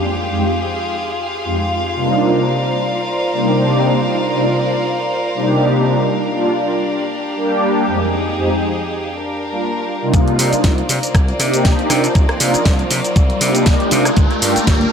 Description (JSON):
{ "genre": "nu-disco, nu disco", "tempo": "119 BPM", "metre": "4/4", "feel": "swing 55% on 16ths", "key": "C minor", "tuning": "A4 = 440 Hz", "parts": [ { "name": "dark studio violin section", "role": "sustained chords", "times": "0.0-14.9 s", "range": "G3 to F5", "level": "-21 LUFS", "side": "left 1 dB", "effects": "sidechain pumping" }, { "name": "warm analog pad", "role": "accompaniment", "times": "0.3-14.5 s", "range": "F2 to G4", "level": "-17 LUFS", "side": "equal", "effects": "ensemble chorus, dub echo" }, { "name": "slap bass", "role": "bass", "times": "10.1-14.8 s", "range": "G1 to C3", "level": "-21 LUFS", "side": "equal", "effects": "sidechain pumping" }, { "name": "electronic kick drum", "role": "drums", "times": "10.1-14.8 s", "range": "none", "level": "-14 LUFS", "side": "equal", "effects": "studio reverb" }, { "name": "pop drum kit", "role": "drums", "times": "10.1-14.9 s", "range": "hi-hat, rim click, shaker, snare drum", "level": "-20 LUFS", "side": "right 1 dB", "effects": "high-pass filter on hats, studio reverb, high-pass filter on perc, high-pass filter on snare, dub echo" }, { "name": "riser", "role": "sound effects", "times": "12.3-14.9 s", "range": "none", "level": "-23 LUFS", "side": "equal", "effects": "none" } ], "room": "wet spring reverb, RT60 1.4 s, digital ambience", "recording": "echo-heavy mix", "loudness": "-14 LUFS", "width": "side -7 dB against mid", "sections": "0.0-10.1 A section; 10.1-14.9 B section", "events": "build-up 10.1-14.9; riser 12.3-14.9", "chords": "0.0 Fm9; 2.1 Cm11; 6.1 Gm7; 7.9 Fm9; 9.1 Cm11; 14.2 Gm7" }